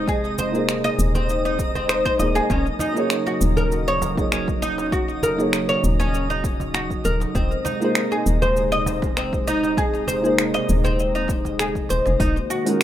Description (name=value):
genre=organic downtempo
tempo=99 BPM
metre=4/4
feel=swing 53% on 16ths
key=unclear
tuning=A4 = 438 Hz
part: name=felt-muted upright piano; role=accompaniment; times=0.0-12.8 s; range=Ab3 to Eb5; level=-26 LUFS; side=right 1 dB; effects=sidechain pumping, ping-pong delay
part: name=warm analog pad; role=sustained chords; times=0.0-12.8 s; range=C3 to Gb4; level=-28 LUFS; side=equal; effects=chorus, sidechain pumping
part: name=oud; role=arpeggios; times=0.0-12.8 s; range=C4 to Eb5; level=-23 LUFS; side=left 1 dB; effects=ping-pong delay
part: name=woody FM bass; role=bass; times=0.0-12.4 s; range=Eb1 to F1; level=-25 LUFS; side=equal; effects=sidechain pumping
part: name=twinkling granular texture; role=texture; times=0.0-12.2 s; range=Eb5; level=-33 LUFS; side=right 1 dB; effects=built-in reverb
part: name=deep house drum kit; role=drums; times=0.1-12.8 s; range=finger snaps, hi-hat, shaker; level=-26 LUFS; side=equal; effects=none
part: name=electronic kick drum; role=drums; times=0.1-12.3 s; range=none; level=-25 LUFS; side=equal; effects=none
part: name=cajon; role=percussion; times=0.4-12.2 s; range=none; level=-34 LUFS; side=right 2 dB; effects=none
room=digital ambience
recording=rough home demo mix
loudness=-19 LUFS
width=side -12 dB against mid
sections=0.0-12.2 A section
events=none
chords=0.0 Ab/Eb; 2.5 Ebm7; 7.3 Ab/Eb; 12.2 Ebm